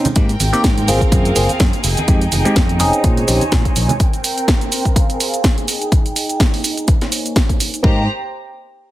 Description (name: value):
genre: filtered disco house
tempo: 125 BPM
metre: 4/4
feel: swing 56% on 16ths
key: Ab major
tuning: A4 = 440 Hz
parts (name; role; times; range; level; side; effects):
- bell-like tine electric piano; accompaniment; 0.0-3.4, 7.8-8.0 s; Ab3 to Ab4; -19 LUFS; equal; phaser, sidechain pumping, low-pass filter
- house drum kit; drums; 0.1-7.8 s; hi-hat, shaker, snare drum; -20 LUFS; right 1 dB; sidechain pumping on perc, sidechain pumping on hats
- congas and tambourine; percussion; 0.1-4.0 s; none; -24 LUFS; right 3 dB; none
- clear studio violin section; sustained chords; 0.2-8.1 s; Bb3 to Bb5; -23 LUFS; right 1 dB; vintage 12-bit sampler grit, sidechain pumping, low-pass filter
- modern bright fingered electric bass; bass; 0.2-3.9, 7.8-8.1 s; F1 to Bb2; -18 LUFS; equal; sidechain pumping, low-pass filter
- electronic kick drum; drums; 0.2-7.9 s; none; -15 LUFS; equal; none
room: light reverb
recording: heavily compressed radio sound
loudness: -13 LUFS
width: side -15 dB against mid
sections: 0.2-7.8 A section; 7.8-8.9 B section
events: break 0.0; filter sweep 0.2-7.8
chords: 0.2 Abmaj9; 1.1 Gbmaj9#11; 1.8 Fm9; 3.0 Bbm11; 4.0 Gmadd11/C; 5.0 Fmadd11/C; 5.7 Ebadd11; 6.9 Bbm11; 7.8 Abmaj9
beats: | 0.16 0.64 1.12 1.60 | 2.08 2.56 3.04 3.52 | 4.00 4.48 4.96 5.44 | 5.92 6.40 6.88 7.36 | 7.84